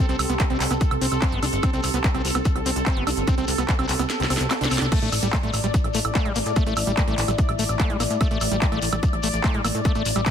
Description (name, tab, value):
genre	psychedelic trance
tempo	146 BPM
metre	4/4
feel	straight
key	A minor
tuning	A4 = 441 Hz
part	bubbling stepped-filter texture	sustained chords	0.0-10.3 s	A4 to D5	-29 LUFS	left 2 dB	chorus, built-in reverb, sidechain pumping
part	overdriven acid bass	riff	0.0-10.3 s	G3 to D4	-28 LUFS	equal	distortion, auto-pan, sidechain pumping, digital delay
part	warbly tape-like pad	texture	0.0-10.3 s	A3 to C6	-32 LUFS	right 1 dB	chorus, built-in reverb, sidechain pumping
part	plucky analog bass	bass	0.1-10.2 s	G1 to A2	-27 LUFS	equal	none
part	techno drum kit	drums	0.1-10.3 s	crash cymbal, handclaps, hi-hat, snare drum, woodblock	-27 LUFS	right 2 dB	none
part	shekere	percussion	0.1-10.3 s	none	-35 LUFS	left 6 dB	none
part	electronic kick drum	drums	0.4-10.3 s	none	-22 LUFS	equal	overdrive
room	light reverb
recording	dense, heavily limited modern master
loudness	-20 LUFS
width	side -8 dB against mid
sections	0.0-10.3 A section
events	kick drops out 4.1-4.9; drum fill 4.1-4.9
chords	0.0 C5; 4.9 A5